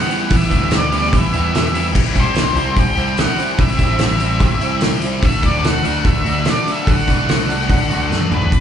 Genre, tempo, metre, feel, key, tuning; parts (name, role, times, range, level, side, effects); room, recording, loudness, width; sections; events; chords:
indie rock; 146 BPM; 4/4; straight; A4 = 444 Hz
octave-fuzz lead guitar; melody; 0.0-8.6 s; B4 to G5; -21 LUFS; right 1 dB; distortion, plate reverb, slapback echo, analog delay
cranked stack guitar; riff; 0.0-8.5 s; G3 to G4; -22 LUFS; left 11 dB; overdrive, slapback echo
tambourine; percussion; 0.0-8.5 s; -40 LUFS; right 4 dB
crunchy overdriven guitar; riff; 0.1-8.5 s; C3 to E4; -24 LUFS; right 7 dB; analog chorus, slapback echo
loose indie drum kit; drums; 0.1-8.6 s; crash cymbal, hi-hat, kick drum, snare drum, toms; -17 LUFS; equal
growling picked electric bass; bass; 0.3-8.6 s; A1 to E3; -20 LUFS; equal; overdrive
light reverb; live gig heard through the venue's PA, club reverb, nothing above 10.7 kHz; -14 LUFS; side -9 dB against mid
0.0-8.5 A section
drum fill 8.1-8.5
0.0 Em; 2.0 C; 5.2 D